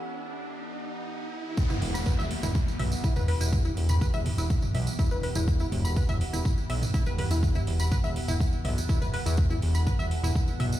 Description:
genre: melodic techno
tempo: 123 BPM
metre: 4/4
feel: straight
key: E minor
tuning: A4 = 436 Hz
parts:
  - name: evolving wavetable pad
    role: sustained chords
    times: 0.0-10.8 s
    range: E3 to F#5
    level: -38 LUFS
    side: right 2 dB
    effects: phaser, built-in reverb, sidechain pumping
  - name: riser and downlifter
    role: sound effects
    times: 0.0-5.5 s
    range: none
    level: -38 LUFS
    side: equal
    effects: none
  - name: analog drone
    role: drone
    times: 3.4-10.8 s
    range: E2 to B2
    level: -39 LUFS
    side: left 1 dB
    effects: none
  - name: electronic kick drum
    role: drums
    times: 1.6-10.5 s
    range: none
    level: -26 LUFS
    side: equal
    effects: none
  - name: tambourine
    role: percussion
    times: 1.6-10.8 s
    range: none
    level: -40 LUFS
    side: right 3 dB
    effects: none
  - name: tight sequenced synth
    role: arpeggios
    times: 1.7-10.6 s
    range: E4 to B5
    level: -36 LUFS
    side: left 1 dB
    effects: chorus, cassette tape, sidechain pumping, digital delay
  - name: house drum kit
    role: drums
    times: 1.7-10.7 s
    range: hi-hat, toms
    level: -33 LUFS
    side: right 1 dB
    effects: high-pass filter on toms, high-pass filter on hats, high-pass filter on room
  - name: fat analog bass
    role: bass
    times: 1.8-10.7 s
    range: E1 to E2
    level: -28 LUFS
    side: equal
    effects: tube saturation, sidechain pumping, high-pass filter
room: digital ambience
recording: played on a big sound system in a bare room, stone room reverb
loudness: -25 LUFS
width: side -13 dB against mid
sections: 0.0-1.6 A section; 1.6-10.8 B section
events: break 0.0-1.6; build-up 0.0-1.6; riser 0.0-1.6; drop 1.6-10.8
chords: 0.0 Em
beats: 0.11 0.60 1.09 | 1.57 2.06 2.55 3.04 | 3.53 4.01 4.50 4.99 | 5.48 5.96 6.45 6.94 | 7.43 7.92 8.40 8.89 | 9.38 9.87 10.36

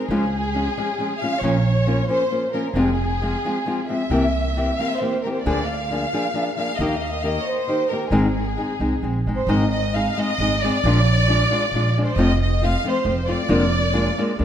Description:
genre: mexican folk, mariachi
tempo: 134 BPM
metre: 3/4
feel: straight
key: Ab major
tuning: A4 = 438 Hz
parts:
  - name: warm symphonic violin section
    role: melody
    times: 0.0-14.4 s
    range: Ab4 to F5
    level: -23 LUFS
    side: equal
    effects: none
  - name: nylon-string guitar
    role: accompaniment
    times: 0.0-14.4 s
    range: F2 to Ab4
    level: -23 LUFS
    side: left 1 dB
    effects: none
  - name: upright bass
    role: bass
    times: 0.1-14.4 s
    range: F1 to Eb2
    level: -22 LUFS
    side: right 1 dB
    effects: none
room: moderate scoring stage reverb, RT60 1.8 s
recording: none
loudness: -18 LUFS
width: side -10 dB against mid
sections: 0.0-9.5 A section; 9.5-14.4 B section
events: none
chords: 0.1 Db; 1.4 Bbm; 2.8 Fm; 4.1 C7; 5.5 Bb7/D; 6.8 Eb; 8.1 Ab; 10.8 Bb7; 12.2 F; 13.5 Bb7/F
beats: | 0.09 0.53 0.97 | 1.42 1.86 2.30 | 2.75 3.20 3.65 | 4.11 4.56 5.01 | 5.46 5.91 6.35 | 6.79 7.23 7.68 | 8.12 8.57 9.03 | 9.49 9.94 10.39 | 10.84 11.28 11.73 | 12.17 12.61 13.05 | 13.50 13.95 14.40

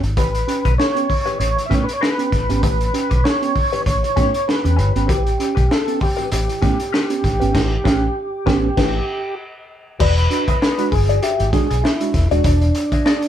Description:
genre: funk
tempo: 98 BPM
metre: 4/4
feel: swing 56% on 16ths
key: unclear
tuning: A4 = 440 Hz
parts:
  - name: direct-recorded clean electric guitar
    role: accompaniment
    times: 0.0-13.2 s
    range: C#4 to E5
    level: -26 LUFS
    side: left 9 dB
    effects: wah
  - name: vintage muted fingered electric bass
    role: bass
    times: 0.0-13.0 s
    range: D#1 to A2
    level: -19 LUFS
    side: equal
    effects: none
  - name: crunchy breakbeat drum kit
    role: drums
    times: 0.0-13.3 s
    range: crash cymbal, hi-hat, kick drum, snare drum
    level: -20 LUFS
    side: equal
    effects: none
  - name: mellow tonewheel organ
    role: melody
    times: 0.2-13.3 s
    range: D4 to E5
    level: -22 LUFS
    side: equal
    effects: chorus vibrato, slow rotary speaker
  - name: mellow reed electric piano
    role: stabs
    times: 0.2-12.4 s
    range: A2 to G4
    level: -24 LUFS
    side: right 6 dB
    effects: fast tremolo
room: moderate studio reverb, RT60 0.5 s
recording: band playing live in one room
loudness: -15 LUFS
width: side -10 dB against mid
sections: 0.0-10.0 A section; 10.0-13.3 B section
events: band accent 7.5-10.0; break 8.8-10.0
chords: 0.0 A9; 10.0 E9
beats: | 0.17 0.79 1.40 2.02 | 2.63 3.25 3.86 4.48 | 5.09 5.71 6.32 6.93 | 7.55 8.16 8.77 9.38 | 10.00 10.61 11.22 11.83 | 12.44 13.05

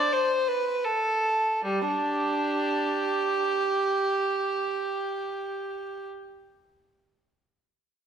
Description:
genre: classical, baroque-style suite movement for unaccompanied violin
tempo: free time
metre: none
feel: none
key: G major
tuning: A4 = 440 Hz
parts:
  - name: warm violin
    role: solo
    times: 0.0-6.1 s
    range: G3 to D5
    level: -25 LUFS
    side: right 1 dB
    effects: none
room: wet recital hall reverb, RT60 1.3 s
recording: recorded in a church or concert hall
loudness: -25 LUFS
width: side -8 dB against mid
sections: 0.0-1.6 A section; 1.6-6.4 B section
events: slowing down 0.0-1.6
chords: none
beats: free time

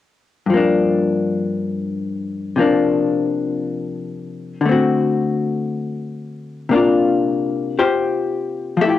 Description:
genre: jazz ballad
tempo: 58 BPM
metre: 4/4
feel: swing 68% on 8ths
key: unclear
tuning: A4 = 440 Hz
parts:
  - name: vintage hollow-body jazz guitar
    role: solo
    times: 0.5-9.0 s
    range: G2 to E5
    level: -17 LUFS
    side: left 3 dB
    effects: cassette tape
room: wet small room reverb, RT60 0.6 s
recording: home recording on cassette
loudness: -17 LUFS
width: side -12 dB against mid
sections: 0.5-8.8 A section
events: none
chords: 0.5 Gm7; 2.6 C9sus4; 4.6 D7; 6.7 C9sus4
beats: | 0.48 1.51 2.55 3.59 | 4.62 5.66 6.70 7.74 | 8.78

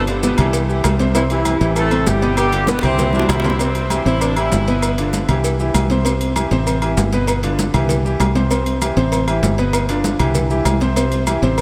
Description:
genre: latin, salsa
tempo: 196 BPM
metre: 4/4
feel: straight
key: C major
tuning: A4 = 440 Hz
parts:
  - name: dark horn section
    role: melody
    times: 0.0-3.4 s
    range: E3 to C5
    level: -24 LUFS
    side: equal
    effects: tape echo
  - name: clear baby grand piano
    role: accompaniment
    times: 0.0-11.6 s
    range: B2 to C5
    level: -22 LUFS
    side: equal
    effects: none
  - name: fingered electric bass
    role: bass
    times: 0.0-11.6 s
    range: G1 to C2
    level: -22 LUFS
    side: equal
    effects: none
  - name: agogo bells and timbales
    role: percussion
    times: 0.1-11.6 s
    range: none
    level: -28 LUFS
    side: equal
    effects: none
  - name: congas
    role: percussion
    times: 0.1-11.6 s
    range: none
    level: -27 LUFS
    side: equal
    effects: none
  - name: cowbell and bongos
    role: percussion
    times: 0.1-11.6 s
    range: none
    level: -29 LUFS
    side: equal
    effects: none
  - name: maracas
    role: percussion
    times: 0.1-11.6 s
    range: none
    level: -34 LUFS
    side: equal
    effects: none
  - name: clear saxophone section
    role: second line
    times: 3.1-5.0 s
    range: C4 to E4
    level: -29 LUFS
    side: equal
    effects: none
room: moderate huge ambient reverb, RT60 4.2 s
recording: dreamy mix soaked in reverb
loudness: -17 LUFS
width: mono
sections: 0.0-3.6 A section; 3.6-11.6 B section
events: drum fill 2.7-3.6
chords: 0.0 G7; 0.5 C; 1.8 Am7; 2.4 G7; 3.0 C; 4.2 Am7; 4.8 G7; 5.4 C; 6.7 Am7; 7.3 G7; 7.9 C; 9.1 Am7; 9.7 G7; 10.3 C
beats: 0.23 0.54 0.84 | 1.15 1.46 1.76 2.07 | 2.38 2.68 2.99 3.29 | 3.60 3.91 4.21 4.52 | 4.83 5.13 5.44 5.75 | 6.05 6.36 6.67 6.97 | 7.28 7.59 7.89 8.20 | 8.51 8.82 9.12 9.43 | 9.74 10.04 10.35 10.66 | 10.96 11.27 11.58

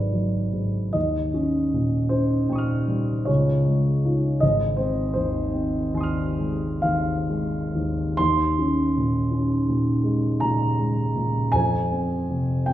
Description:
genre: classical, impressionist solo piano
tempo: 43-56 BPM (dotted quarters)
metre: 9/8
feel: rubato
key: Ab major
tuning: A4 = 440 Hz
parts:
  - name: warm grand piano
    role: solo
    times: 0.0-12.7 s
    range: Ab1 to F6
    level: -21 LUFS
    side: equal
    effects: none
room: wet recital hall reverb, RT60 1.7 s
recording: heard from further back in the room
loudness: -21 LUFS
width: side -13 dB against mid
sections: 0.0-12.7 A section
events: none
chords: 0.0 Abm7b5; 1.0 Eb9; 3.3 Dbadd9; 4.4 Ab6; 8.2 Eb7sus4; 11.6 Fm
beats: | 0.95 2.13 3.29 | 4.43 5.54 6.84 | 8.19 9.33 10.42 | 11.55 12.69

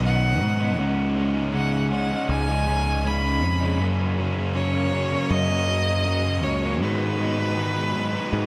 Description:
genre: rock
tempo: 80 BPM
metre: 4/4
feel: straight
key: unclear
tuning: A4 = 440 Hz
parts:
  - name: clear violin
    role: melody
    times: 0.0-8.5 s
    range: B4 to B5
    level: -30 LUFS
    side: equal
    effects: diffuse ambient delay
  - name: glassy FM pad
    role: sustained chords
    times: 0.0-8.5 s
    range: D#4 to A#5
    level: -39 LUFS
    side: equal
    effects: none
  - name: twelve-string electric guitar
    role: arpeggios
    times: 0.0-8.5 s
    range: F#2 to D#4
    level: -36 LUFS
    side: equal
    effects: none
  - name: raw garage guitar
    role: riff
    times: 0.0-8.5 s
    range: F#2 to D#4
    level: -32 LUFS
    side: equal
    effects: overdrive
  - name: thick fuzz guitar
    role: riff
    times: 0.0-8.5 s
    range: F#2 to D#4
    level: -33 LUFS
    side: equal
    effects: distortion
  - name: growling picked electric bass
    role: bass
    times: 0.0-8.5 s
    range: B1 to G#2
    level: -27 LUFS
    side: equal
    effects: overdrive
room: moderate lush hall reverb, RT60 2.3 s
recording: dreamy mix soaked in reverb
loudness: -23 LUFS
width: mono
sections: 0.0-8.5 A section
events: none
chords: 0.0 Badd9; 0.8 C#sus2; 3.8 F#; 6.8 G#m7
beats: 0.02 | 0.78 1.53 2.29 3.04 | 3.80 4.55 5.31 6.06 | 6.82 7.58 8.34

